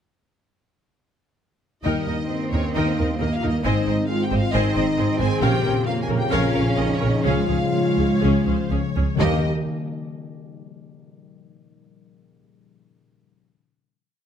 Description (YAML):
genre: cinematic, heroic adventure film score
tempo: 121-136 BPM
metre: 4/4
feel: straight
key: Eb mixolydian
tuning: A4 = 440 Hz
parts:
  - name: rich symphonic violin section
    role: melody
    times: 1.8-9.5 s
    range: Db5 to Ab5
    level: -31 LUFS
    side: left 3 dB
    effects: none
  - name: warm studio violin section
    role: second line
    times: 1.8-9.5 s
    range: F4 to Ab5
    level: -33 LUFS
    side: left 1 dB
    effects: none
  - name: warm symphonic viola section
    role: accompaniment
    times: 1.8-9.5 s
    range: C4 to C5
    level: -28 LUFS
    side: equal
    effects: none
  - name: warm French horn section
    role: sustained chords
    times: 1.8-9.4 s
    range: Db4 to Ab4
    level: -27 LUFS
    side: left 3 dB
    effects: none
  - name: rich symphonic double bass section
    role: bass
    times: 1.8-9.5 s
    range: Ab1 to Eb2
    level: -24 LUFS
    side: right 2 dB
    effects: none
  - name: warm studio cello section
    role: bass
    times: 1.8-9.5 s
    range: Eb2 to Db4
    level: -27 LUFS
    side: right 2 dB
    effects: none
  - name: warm trombone section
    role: sustained chords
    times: 1.9-9.4 s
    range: F2 to C4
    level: -28 LUFS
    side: right 4 dB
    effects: none
  - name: concert harp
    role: arpeggios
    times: 1.9-9.5 s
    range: Ab2 to Bb4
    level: -28 LUFS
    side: left 8 dB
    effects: none
  - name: timpani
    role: percussion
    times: 5.4-6.0, 9.2-9.4 s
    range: Bb2 to Eb3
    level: -28 LUFS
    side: equal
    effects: none
room: moderate recital hall reverb, RT60 1.6 s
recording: close, detailed microphones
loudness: -19 LUFS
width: side -8 dB against mid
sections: 1.8-9.2 theme; 9.2-11.1 final chord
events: slowing down 4.5-9.2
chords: 1.8 Eb; 3.6 Ab; 5.4 Bbm; 7.2 Db; 9.2 Eb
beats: | 1.85 2.30 2.75 3.20 | 3.65 4.09 4.54 4.98 | 5.42 5.87 6.32 6.78 | 7.25 7.74 8.22 8.71 | 9.20